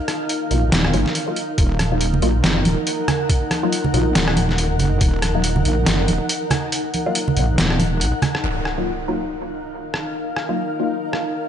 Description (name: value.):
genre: deep dubstep.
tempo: 140 BPM.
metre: 4/4.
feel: swing 57% on 16ths, half-time.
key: Eb minor.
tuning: A4 = 439 Hz.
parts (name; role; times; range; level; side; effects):
granular cloud pad; sustained chords; 0.0-11.5 s; Eb4 to Gb5; -24 LUFS; equal; built-in reverb.
trip hop sampler-style drum kit; drums; 0.1-11.2 s; hi-hat, rim click, snare drum; -22 LUFS; equal; none.
filtered dub chord stab; stabs; 0.5-11.0 s; Gb3 to F4; -26 LUFS; left 2 dB; phaser, analog chorus, dub echo.
wobble bass; bass; 0.5-8.1 s; Eb1 to Bb1; -20 LUFS; equal; chorus.
electronic kick drum; drums; 1.6-5.1 s; none; -18 LUFS; equal; none.
congas; percussion; 1.8-8.3 s; none; -24 LUFS; right 3 dB; dub echo.
impact; sound effects; 8.4-10.2 s; none; -28 LUFS; equal; none.
room: light reverb, digital ambience.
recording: nothing above 10.6 kHz.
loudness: -17 LUFS.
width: side -9 dB against mid.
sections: 0.0-8.4 A section; 8.4-11.5 B section.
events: kick drops out 6.7-8.4; drum fill 8.2; impact 8.4-10.2.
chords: 0.0 Ebmadd9.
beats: 0.30 0.72 1.15 | 1.58 2.01 2.44 2.87 | 3.30 3.72 4.15 4.58 | 5.01 5.44 5.87 6.30 | 6.72 7.15 7.58 8.01 | 8.44 8.87 9.30 9.72 | 10.15 10.58 11.01 11.44.